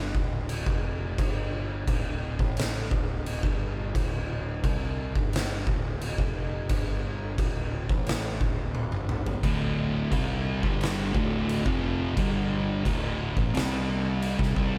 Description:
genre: stoner and doom metal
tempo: 88 BPM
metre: 4/4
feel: straight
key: D minor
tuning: A4 = 440 Hz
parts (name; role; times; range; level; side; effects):
- fuzz picked electric bass; bass; 0.0-14.8 s; D1 to C2; -34 LUFS; equal; overdrive
- oversized low-tuned drum kit; drums; 0.1-14.7 s; crash cymbal, kick drum, snare drum, toms; -31 LUFS; equal; none
- thick fuzz guitar; riff; 9.4-14.8 s; D2 to C4; -30 LUFS; equal; distortion
room: light reverb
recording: band playing live in one room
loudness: -28 LUFS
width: mono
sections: 0.0-14.8 A section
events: drum fill 8.8-9.4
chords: 0.0 Dm; 1.2 N.C.; 7.4 Dm; 12.2 G5; 12.9 D5; 13.5 C5

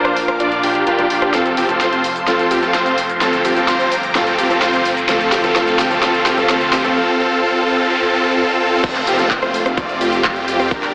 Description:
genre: EDM, festival progressive house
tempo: 128 BPM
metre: 4/4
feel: straight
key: F major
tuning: A4 = 440 Hz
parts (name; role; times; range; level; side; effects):
- felt-muted upright piano; accompaniment; 0.0-7.0 s; Bb2 to F4; -21 LUFS; equal; sidechain pumping, tape echo
- lush unison pad; sustained chords; 0.0-10.9 s; C3 to D6; -24 LUFS; equal; none
- supersaw chords; riff; 0.0-10.9 s; C4 to D5; -15 LUFS; equal; sidechain pumping, low-pass filter, tape echo
- detuned saw bass; bass; 0.0-10.9 s; F1 to F2; -32 LUFS; equal; sidechain pumping
- big-room dance drum kit; drums; 0.0-10.9 s; crash cymbal, handclaps, hi-hat, ride cymbal, rim click, shaker, snare drum; -21 LUFS; equal; overdrive, high-pass filter on hats, high-pass filter on snare, high-pass filter on perc, high-pass filter on cymbals
- riser, noise sweep and downlifter; sound effects; 0.3-10.9 s; none; -25 LUFS; equal; none
- electronic kick drum; drums; 8.8-10.8 s; none; -21 LUFS; equal; none
room: moderate huge ambient reverb, RT60 4.1 s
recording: AM radio sound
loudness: -13 LUFS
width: side -34 dB against mid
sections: 0.0-8.8 A section; 8.8-10.9 B section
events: build-up 0.0-8.8; drum fill 1.3-7.0; drop 8.8-10.9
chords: 0.0 Bb; 1.3 F; 3.2 Gm; 5.1 Dm; 7.0 F/C; 8.8 F

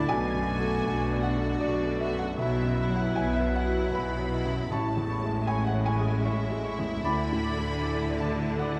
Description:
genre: cinematic, emotional film score for orchestra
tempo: 78 BPM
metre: 3/4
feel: rubato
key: A major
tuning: A4 = 440 Hz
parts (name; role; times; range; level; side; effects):
- bright symphonic violin section; melody; 0.0-8.8 s; E4 to F#4; -41 LUFS; equal; none
- mellow clarinet; second line; 0.0-8.8 s; E4 to F#4; -42 LUFS; equal; none
- rich symphonic violin section; second line; 0.0-8.8 s; D5 to B5; -41 LUFS; equal; none
- warm oboe; second line; 0.0-8.8 s; B4 to D5; -41 LUFS; equal; none
- felt-muted upright piano; accompaniment; 0.0-8.8 s; A1 to B5; -34 LUFS; equal; none
- warm studio viola section; accompaniment; 0.0-8.8 s; F#3 to E4; -41 LUFS; equal; none
- mellow French horn section; sustained chords; 0.0-8.8 s; F#3 to E4; -38 LUFS; equal; none
- rich symphonic cello section; bass; 0.1-8.8 s; A2 to D3; -36 LUFS; equal; none
- rich symphonic double bass section; bass; 0.1-8.8 s; A1 to D2; -34 LUFS; equal; none
room: moderate scoring stage reverb, RT60 2.0 s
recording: none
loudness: -28 LUFS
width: mono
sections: 0.0-8.8 A section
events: none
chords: 0.1 Bm7; 2.4 Esus2/B; 4.7 Amaj7; 7.0 Dsus2

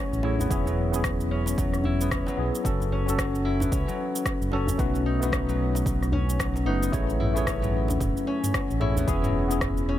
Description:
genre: organic downtempo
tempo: 112 BPM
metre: 4/4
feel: swing 60% on 16ths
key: unclear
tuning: A4 = 442 Hz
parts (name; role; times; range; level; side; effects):
- barky tine electric piano; accompaniment; 0.0-10.0 s; A3 to C#5; -31 LUFS; left 1 dB; medium stereo tremolo, sidechain pumping, ping-pong delay
- concert harp; arpeggios; 0.0-10.0 s; F#3 to E4; -29 LUFS; left 2 dB; low-pass filter, ping-pong delay
- quartz singing bowl; texture; 0.0-10.0 s; C#5; -44 LUFS; right 2 dB; none
- smooth synth bass; bass; 0.1-10.0 s; E1 to C#2; -27 LUFS; equal; sidechain pumping
- deep house drum kit; drums; 0.1-9.9 s; rim click, shaker, toms; -33 LUFS; right 1 dB; none
- djembe; percussion; 0.2-9.6 s; none; -34 LUFS; left 1 dB; none
- electronic kick drum; drums; 0.5-9.7 s; none; -30 LUFS; right 1 dB; none
room: little or no reverb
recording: none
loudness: -23 LUFS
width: side -12 dB against mid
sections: 0.0-10.0 A section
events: none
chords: 0.0 Amaj7; 0.5 E; 2.6 F#m; 4.8 B7; 6.9 Amaj7; 9.1 E

